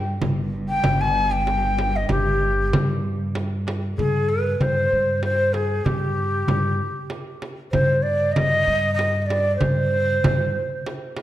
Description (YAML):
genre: Arabic maqam ensemble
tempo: 96 BPM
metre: 3/4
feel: straight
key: G maqam hijaz from 4.0 s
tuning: A4 = 440 Hz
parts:
  - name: breathy ney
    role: melody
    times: 0.0-11.1 s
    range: G4 to Ab5+45c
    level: -22 LUFS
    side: equal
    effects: none
  - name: upright bass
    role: bass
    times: 0.0-10.5 s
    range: G1 to G2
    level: -26 LUFS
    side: equal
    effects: none
  - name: clear cello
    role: drone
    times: 0.0-4.0 s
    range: G2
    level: -32 LUFS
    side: right 1 dB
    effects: none
  - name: darbuka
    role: percussion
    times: 0.2-11.2 s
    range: none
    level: -28 LUFS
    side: left 2 dB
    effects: none
  - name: frame drum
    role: percussion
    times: 0.2-11.2 s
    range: none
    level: -27 LUFS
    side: right 2 dB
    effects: none
room: wet recital hall reverb, RT60 1.4 s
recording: dark, warm production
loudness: -19 LUFS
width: side -13 dB against mid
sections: 0.0-4.0 A section; 4.0-11.2 B section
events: none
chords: none